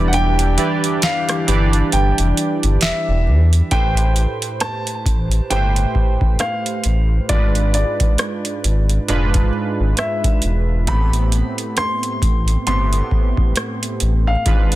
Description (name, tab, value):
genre	contemporary R&B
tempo	67 BPM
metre	4/4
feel	swing 58% on 16ths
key	A minor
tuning	A4 = 440 Hz
part	warm grand piano	melody	0.0-14.8 s	D5 to C6	-24 LUFS	equal	tape echo
part	warm analog keys	accompaniment	0.0-14.8 s	G#2 to D5	-23 LUFS	right 3 dB	chorus
part	chorused pulse-width pad	sustained chords	0.0-3.7 s	E3 to G4	-24 LUFS	left 4 dB	none
part	sub bass with octave	bass	0.0-14.8 s	E1 to E2	-16 LUFS	equal	none
part	booming analog drum machine	drums	0.1-14.8 s	hi-hat, kick drum, rim click, snare drum	-19 LUFS	equal	none
room	little or no reverb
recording	dense, heavily limited modern master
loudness	-15 LUFS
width	side -16 dB against mid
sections	0.0-3.7 A section; 3.7-14.8 B section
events	kick muted 0.1-3.7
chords	0.0 Em7; 3.7 Am9; 7.3 E7b9/G#; 10.9 Am9